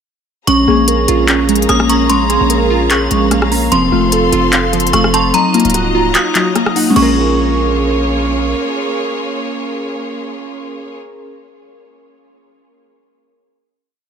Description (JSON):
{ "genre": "hip hop, trap", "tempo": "148 BPM", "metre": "4/4", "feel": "half-time", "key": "Bb minor", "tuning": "A4 = 439 Hz", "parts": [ { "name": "metallic FM bell", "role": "second line", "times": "0.5-8.1 s", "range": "Bb5 to Eb6", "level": "-18 LUFS", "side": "left 1 dB", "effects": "chorus, phaser, tape echo" }, { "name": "glassy wavetable pluck", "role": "accompaniment", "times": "0.5-11.4 s", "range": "F3 to F5", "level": "-16 LUFS", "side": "left 1 dB", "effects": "chorus, low-pass filter" }, { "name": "clear symphonic string section", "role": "sustained chords", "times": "0.5-11.0 s", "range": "Gb3 to C6", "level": "-22 LUFS", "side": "left 2 dB", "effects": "none" }, { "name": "glassy digital keys", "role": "arpeggios", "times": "0.5-11.4 s", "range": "C4 to Bb5", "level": "-17 LUFS", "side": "right 3 dB", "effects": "chorus, low-pass filter, tape echo" }, { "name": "distorted 808-style bass", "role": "bass", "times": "0.5-8.5 s", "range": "Db1 to Bb1", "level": "-18 LUFS", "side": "left 1 dB", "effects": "distortion" }, { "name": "trap drum kit", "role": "drums", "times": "0.5-7.1 s", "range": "crash cymbal, handclaps, hi-hat, rim click", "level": "-17 LUFS", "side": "left 1 dB", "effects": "none" } ], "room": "light reverb", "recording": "none", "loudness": "-11 LUFS", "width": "side -7 dB against mid", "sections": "0.5-7.0 hook; 7.0-10.2 final chord", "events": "kick muted 6.2-7.0", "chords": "0.5 Bbm7; 3.7 F; 5.3 Ebmadd9; 7.0 Bbm7", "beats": "| 0.47 0.88 1.28 1.69 | 2.10 2.50 2.91 3.31 | 3.72 4.12 4.53 4.93 | 5.34 5.75 6.15 6.56 | 6.96 7.37 7.77 8.18 | 8.58 8.99 9.39 9.80" }